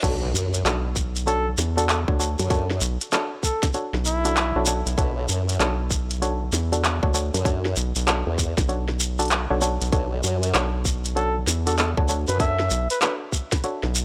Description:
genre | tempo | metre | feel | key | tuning
glitch hop | 97 BPM | 4/4 | swing 63% on 16ths | B minor | A4 = 440 Hz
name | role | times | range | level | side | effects
muted clav | stabs | 0.0-13.9 s | D4 to D5 | -30 LUFS | equal | sidechain pumping, analog delay
formant-sweep wobble bass | bass | 0.0-12.7 s | B1 to F#2 | -26 LUFS | equal | chorus, tube saturation
electronic kick drum | drums | 0.0-13.6 s | none | -26 LUFS | equal | high-pass filter on kick, high-pass filter on room
glitchy drum kit | drums | 0.0-13.9 s | crash cymbal, handclaps, hi-hat, snare drum | -28 LUFS | equal | high-pass filter on hats, high-pass filter on snare, high-pass filter on cymbals
shekere | percussion | 0.0-14.0 s | none | -31 LUFS | equal | none
reverse cymbal and impact | sound effects | 0.0-2.5 s | none | -39 LUFS | equal | none
rubbery square bass | bass | 0.6-14.0 s | B1 to E2 | -28 LUFS | equal | none
dark trumpet | melody | 1.3-4.7, 11.2-13.1 s | E4 to E5 | -30 LUFS | equal | analog delay
room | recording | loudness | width
little or no reverb | dry, gritty hardware recording, high-pass filter | -23 LUFS | mono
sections
0.0-14.0 A section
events
drop 0.0-14.0; impact 0.0-2.5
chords
0.0 Bm9

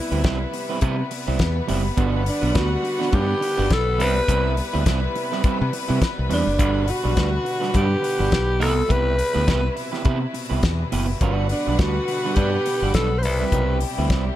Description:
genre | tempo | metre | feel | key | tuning
disco | 104 BPM | 4/4 | swing 56% on 16ths | unclear | A4 = 440 Hz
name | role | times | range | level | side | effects
breathy alto saxophone | melody | 0.0-13.8 s | D4 to C5 | -24 LUFS | equal | none
dark studio string section | sustained chords | 0.0-14.4 s | B2 to F#5 | -29 LUFS | left 2 dB | none
electric guitar at the edge of break-up | accompaniment | 0.1-14.3 s | G3 to B4 | -27 LUFS | right 7 dB | none
modern bright fingered electric bass | bass | 0.1-14.3 s | F#1 to C3 | -23 LUFS | equal | none
damped 70s drum kit | drums | 0.2-14.3 s | hi-hat, kick drum, snare drum | -24 LUFS | left 1 dB | none
room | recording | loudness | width
small room ambience | none | -19 LUFS | side -13 dB against mid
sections
0.0-14.4 A section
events
none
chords
0.0 Cmaj7; 2.0 Gmaj7; 4.0 Cmaj7; 6.6 Gmaj7; 8.6 Cmaj7; 11.2 Gmaj7; 13.2 Cmaj7

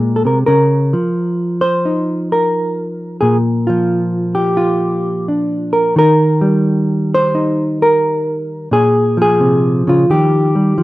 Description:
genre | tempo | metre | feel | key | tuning
solo jazz | 87 BPM | 4/4 | swing 67% on 8ths | Eb major | A4 = 440 Hz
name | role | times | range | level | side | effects
hollow-body jazz guitar | solo | 0.0-10.8 s | Bb2 to C5 | -12 LUFS | equal | none
room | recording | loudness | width
light reverb | rough home demo mix | -12 LUFS | side -17 dB against mid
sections
0.0-10.8 A section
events
none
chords
0.5 Db69; 3.2 Bb6; 6.0 Eb; 8.7 Bbm7; 10.1 Ebadd9

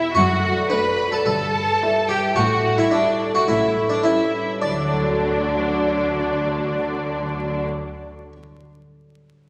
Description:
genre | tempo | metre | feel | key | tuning
cinematic, playful, whimsical film cue | 107 BPM | 4/4 | straight | D major | A4 = 440 Hz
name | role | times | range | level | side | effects
clear studio violin section | melody | 0.0-7.6 s | D5 to B5 | -31 LUFS | equal | none
harpsichord | melody | 0.0-8.3 s | D4 to D5 | -25 LUFS | equal | none
clear studio violin section | second line | 0.0-7.6 s | D4 to B4 | -27 LUFS | equal | none
concert harp | arpeggios | 0.0-8.5 s | E2 to G5 | -27 LUFS | equal | none
rich studio cello section | bass | 0.1-7.6 s | F#2 to D3 | -30 LUFS | equal | none
rich studio double bass section | bass | 0.2-7.6 s | F#1 to D2 | -34 LUFS | equal | none
warm studio viola section | accompaniment | 0.7-7.6 s | F#3 to E4 | -30 LUFS | equal | none
room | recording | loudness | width
wet scoring stage reverb, RT60 1.9 s | vinyl crackle | -21 LUFS | mono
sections
0.0-4.6 A section; 4.6-6.9 B section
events
none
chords
0.2 D/F#; 1.3 Em/G; 2.4 A5; 3.5 A9; 4.6 D

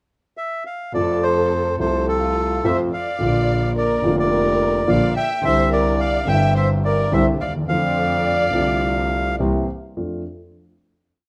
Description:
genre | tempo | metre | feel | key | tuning
tango | 106 BPM | 4/4 | rubato | F major | A4 = 441 Hz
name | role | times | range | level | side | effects
bandoneon | melody | 0.4-9.4 s | A4 to G5 | -24 LUFS | equal | none
warm studio violin section | second line | 0.9-9.4 s | F4 to E5 | -27 LUFS | equal | none
dark concert grand piano | accompaniment | 0.9-10.2 s | F1 to G4 | -24 LUFS | equal | none
clear double bass | bass | 0.9-10.2 s | F1 to F2 | -26 LUFS | equal | none
room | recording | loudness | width
moderate large studio reverb, RT60 1.4 s | none | -20 LUFS | mono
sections
0.0-0.9 pickup bar; 0.9-10.0 A section; 10.0-11.3 final chord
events
none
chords
0.0 N.C.; 0.9 F; 3.2 Bb; 5.4 Cadd9; 7.7 F6; 9.4 C7; 10.0 F6

